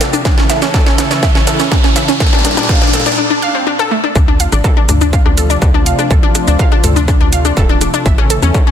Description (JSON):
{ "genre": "melodic techno", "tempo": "123 BPM", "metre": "4/4", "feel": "straight", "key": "D minor", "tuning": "A4 = 440 Hz", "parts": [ { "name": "warm analog pad", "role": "sustained chords", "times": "0.0-8.7 s", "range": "Bb2 to A4", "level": "-20 LUFS", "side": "left 1 dB", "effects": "lush chorus, sidechain pumping" }, { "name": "analog pluck", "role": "arpeggios", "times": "0.0-8.7 s", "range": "A3 to F5", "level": "-15 LUFS", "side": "left 2 dB", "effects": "chorus, sidechain pumping, ping-pong delay" }, { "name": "techno drum kit", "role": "drums", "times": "0.0-8.6 s", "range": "hi-hat, rim click, shaker, snare drum, toms", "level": "-19 LUFS", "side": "right 1 dB", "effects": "overdrive, high-pass filter on snare, high-pass filter on perc, high-pass filter on hats, high-pass filter on toms" }, { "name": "riser", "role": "sound effects", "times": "0.0-3.2 s", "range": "none", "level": "-20 LUFS", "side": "right 1 dB", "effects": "none" }, { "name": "electronic kick drum", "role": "drums", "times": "0.3-8.6 s", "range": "none", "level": "-12 LUFS", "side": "equal", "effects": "distortion, overdrive" }, { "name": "tight sequencer bass", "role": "bass", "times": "4.2-8.5 s", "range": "D1 to E2", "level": "-14 LUFS", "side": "equal", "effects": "sidechain pumping" } ], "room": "light reverb", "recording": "dense, heavily limited modern master", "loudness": "-9 LUFS", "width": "side -9 dB against mid", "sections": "0.0-4.2 A section; 4.2-8.7 B section", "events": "build-up 0.0-4.2; drum fill 0.0-3.2; riser 0.0-3.2; break 3.2-4.2; drop 4.2-8.7", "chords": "0.3 A; 2.2 Gmadd9; 4.2 Dm7; 8.1 A" }